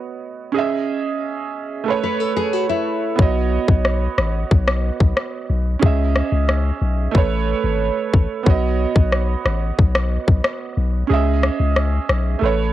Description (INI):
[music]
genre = dancehall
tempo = 91 BPM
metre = 4/4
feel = straight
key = B mixolydian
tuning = A4 = 442 Hz
[part]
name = clear baby grand piano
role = accompaniment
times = 0.0-12.7 s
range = A3 to E5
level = -22 LUFS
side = right 7 dB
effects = sidechain pumping, cassette tape
[part]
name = nylon-string guitar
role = arpeggios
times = 2.0-3.2 s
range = E4 to B4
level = -23 LUFS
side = left 8 dB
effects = cassette tape
[part]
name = punchy sub bass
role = bass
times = 3.2-12.7 s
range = G#1 to C#2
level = -19 LUFS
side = left 1 dB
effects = none
[part]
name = island pop drum kit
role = drums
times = 3.2-12.2 s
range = kick drum, rim click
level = -17 LUFS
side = left 1 dB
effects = cassette tape
[sound]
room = studio reverb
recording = home recording on cassette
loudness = -16 LUFS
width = side -13 dB against mid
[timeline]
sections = 0.0-12.7 A section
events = kick muted 11.1-12.7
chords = 0.0 Badd9; 0.6 C#madd9; 1.9 Aadd9; 3.2 Badd9; 5.8 C#madd9; 7.1 Aadd9; 8.5 Badd9; 11.1 C#madd9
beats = | 0.55 1.21 1.87 2.53 | 3.19 3.85 4.51 5.17 | 5.83 6.49 7.15 7.81 | 8.46 9.12 9.78 10.44 | 11.10 11.76 12.42